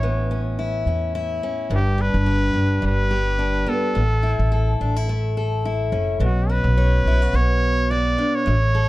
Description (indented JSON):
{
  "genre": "acoustic pop",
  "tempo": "106 BPM",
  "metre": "4/4",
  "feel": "swing 55% on 16ths",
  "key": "unclear",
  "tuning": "A4 = 436 Hz",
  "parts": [
    { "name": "bright trumpet", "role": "melody", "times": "0.0-8.9 s", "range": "F#4 to D5", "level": "-24 LUFS", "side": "equal", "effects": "none" },
    { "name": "picked steel-string acoustic guitar", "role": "accompaniment", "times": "0.0-8.9 s", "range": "G2 to C#5", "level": "-24 LUFS", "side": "left 1 dB", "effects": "none" },
    { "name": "upright bass", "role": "bass", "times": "0.0-8.9 s", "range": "F#1 to E2", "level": "-20 LUFS", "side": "equal", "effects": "none" }
  ],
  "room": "little or no reverb",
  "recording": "dark, warm production",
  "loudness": "-18 LUFS",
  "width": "side -18 dB against mid",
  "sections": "0.0-1.7 A section; 1.7-8.9 B section",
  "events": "none",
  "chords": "0.0 Aadd9; 1.7 G; 4.0 A; 6.2 Bmadd9",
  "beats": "0.02 0.58 1.14 | 1.71 2.27 2.83 3.39 | 3.96 4.52 5.08 5.65 | 6.21 6.77 7.34 7.90 | 8.46"
}